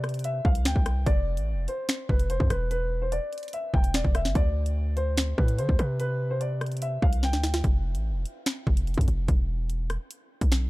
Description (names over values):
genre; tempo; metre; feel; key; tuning
hip hop, drill; 146 BPM; 4/4; half-time; unclear; A4 = 440 Hz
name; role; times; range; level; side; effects
dark grand piano; melody; 0.0-7.6 s; B4 to G5; -32 LUFS; left 1 dB; none
hard-hitting 808-style bass; bass; 0.0-10.7 s; E1 to D3; -27 LUFS; equal; none
drill drum kit; drums; 0.0-10.6 s; finger snaps, hi-hat, kick drum, rim click, snare drum; -25 LUFS; equal; none
room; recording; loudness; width
little or no reverb; dark, warm production; -24 LUFS; side -20 dB against mid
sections
0.0-7.6 A section; 7.6-10.7 B section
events
drum fill 7.2-7.6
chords
0.0 Csus2; 1.1 F5; 2.7 N.C.; 4.4 D5; 6.0 Csus2; 7.6 N.C.; 9.3 E5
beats
0.24 0.66 | 1.06 1.48 1.89 2.30 | 2.71 3.12 3.53 3.94 | 4.35 4.76 5.17 5.59 | 6.00 6.41 6.82 7.23 | 7.64 8.05 8.46 8.87 | 9.29 9.70 10.11 10.52